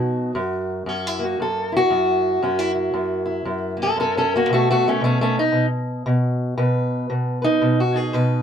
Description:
acoustic country blues, solo or duo; 116 BPM; 4/4; swing 60% on 8ths; F# mixolydian; A4 = 442 Hz
fingerpicked steel-string acoustic guitar; solo; 0.0-8.4 s; F#2 to B4; -18 LUFS; equal
light reverb; dark, warm production; -18 LUFS; side -8 dB against mid
0.0-8.4 A section
steel-string acoustic guitar solo 0.0-8.4
0.4 F#7; 4.5 B7

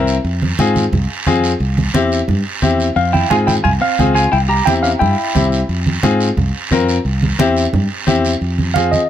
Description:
latin, cumbia; 176 BPM; 4/4; straight; F harmonic minor; A4 = 444 Hz
bright upright piano; accompaniment; 0.0-9.0 s; C4 to Bb4; -18 LUFS; left 4 dB
fingered electric bass; bass; 0.0-9.0 s; C2 to Ab2; -18 LUFS; equal
guiro; percussion; 0.1-9.1 s; -26 LUFS; right 5 dB
congas; percussion; 0.2-9.1 s; -19 LUFS; right 2 dB
tine electric piano; melody; 3.0-5.5, 8.7-9.1 s; Eb5 to Bb5; -17 LUFS; moving between left 3 dB and right 4 dB; auto-pan
clean electric guitar; second line; 3.0-5.5 s; C4 to G4; -24 LUFS; left 6 dB
light reverb; -13 LUFS; side -10 dB against mid
0.0-8.4 A section
0.2 Fm; 1.6 C; 3.0 Fm; 4.3 C; 5.7 Fm; 7.1 C; 8.4 Fm

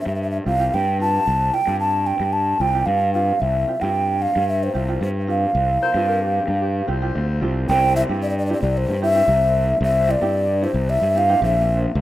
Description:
calypso; 112 BPM; 4/4; straight; A4 = 440 Hz
breathy mellow alto ocarina; melody; 0.0-11.8 s; C5 to A5; -20 LUFS; equal; digital delay
tenor ukulele; accompaniment; 0.0-11.8 s; C4 to Bb4; -30 LUFS; right 5 dB
fuzz fingered electric bass; bass; 0.1-12.0 s; Bb1 to G2; -22 LUFS; left 1 dB; overdrive
mellow alto saxophone; second line; 5.8-7.7 s; G4 to C5; -28 LUFS; left 4 dB; digital delay
light reverb; rough home demo mix; -17 LUFS; side -14 dB against mid
0.0-7.7 A section; 7.7-12.0 B section
0.0 Csus4; 7.7 C

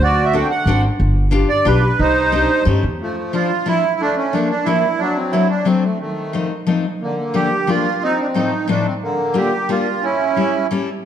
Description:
musette waltz; 179 BPM; 3/4; straight; A4 = 439 Hz
accordion; melody; 0.0-10.7 s; D3 to G5; -18 LUFS; right 3 dB; light tremolo tuning
upright bass; bass; 0.0-3.0 s; G1 to G2; -17 LUFS; equal
picked steel-string acoustic guitar; accompaniment; 0.3-10.9 s; A2 to A4; -20 LUFS; left 4 dB
wet recital hall reverb, RT60 1.7 s; dark, warm production; -15 LUFS; side -9 dB against mid
0.0-3.0 A section; 3.0-11.1 B section
0.0 D7; 1.0 G7; 2.0 Cmadd9; 2.7 A7; 3.0 Dmadd9; 4.0 Bbmaj7; 5.0 D7; 6.0 F7; 7.0 Bbmaj7; 8.0 F7; 9.0 Bb6; 10.0 A7

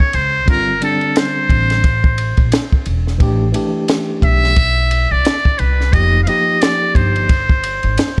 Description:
hip hop, jazz-hop; 88 BPM; 4/4; swing 59% on 16ths; A phrygian; A4 = 440 Hz
trumpet with metal mute; melody; 0.0-8.2 s; A4 to F5; -19 LUFS; equal; analog delay
compact cocktail drum kit; drums; 0.0-8.2 s; hi-hat, kick drum, ride cymbal, snare drum; -18 LUFS; equal
upright bass; bass; 0.1-8.0 s; E1 to Db2; -20 LUFS; equal; transformer saturation
tine electric piano; accompaniment; 0.5-7.3 s; D3 to G4; -23 LUFS; equal
small room ambience; dry, gritty hardware recording; -15 LUFS; mono
0.0-8.2 A section
0.5 Gsus4; 3.2 Am11; 5.9 F9sus4

